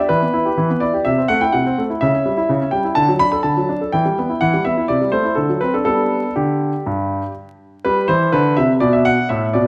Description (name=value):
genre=classical-period piano sonatina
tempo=125 BPM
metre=4/4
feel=straight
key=G major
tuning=A4 = 440 Hz
part: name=clear concert grand piano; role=solo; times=0.0-9.7 s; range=G2 to B5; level=-17 LUFS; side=equal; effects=none
room=wet recital hall reverb, RT60 1.5 s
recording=vinyl crackle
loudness=-17 LUFS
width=mono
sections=0.0-7.9 A section; 7.9-9.7 B section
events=none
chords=0.1 Em; 1.1 Am/C; 2.0 C#dim; 3.0 D; 3.9 Em; 4.9 Am7/C; 5.4 D7; 5.9 G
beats=| 0.11 0.58 1.06 1.54 | 2.02 2.49 2.96 3.44 | 3.92 4.40 4.88 5.37 | 5.87 6.37 6.87 7.36 | 7.85 8.34 8.82 9.30